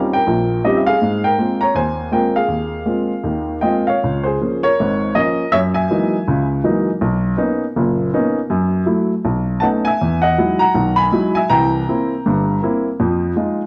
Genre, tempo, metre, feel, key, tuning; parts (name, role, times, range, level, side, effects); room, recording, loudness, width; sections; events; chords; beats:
solo jazz; 162 BPM; 4/4; swing 63% on 8ths, rubato; Ab major; A4 = 442 Hz
warm baby grand piano; solo; 0.0-13.6 s; Gb1 to B5; -17 LUFS; equal
moderate large studio reverb, RT60 1.4 s; dark, warm production; -17 LUFS; mono
0.0-4.0 A section; 4.0-13.7 B section
0.0 Eb13; 1.0 Ab69; 4.0 Db6; 5.5 Gb13; 7.0 Cbmaj9; 8.5 Gbm7; 9.2 Cb9; 10.0 Emaj9; 11.5 C7; 13.0 Fm7
0.28 0.65 | 1.02 1.39 1.76 2.12 | 2.49 2.87 3.25 3.63 | 4.02 4.40 4.78 5.16 | 5.53 5.90 6.27 6.64 | 7.01 7.38 7.75 8.12 | 8.49 8.87 9.24 9.63 | 10.01 10.39 10.76 11.14 | 11.51 11.88 12.25 12.62 | 12.99 13.36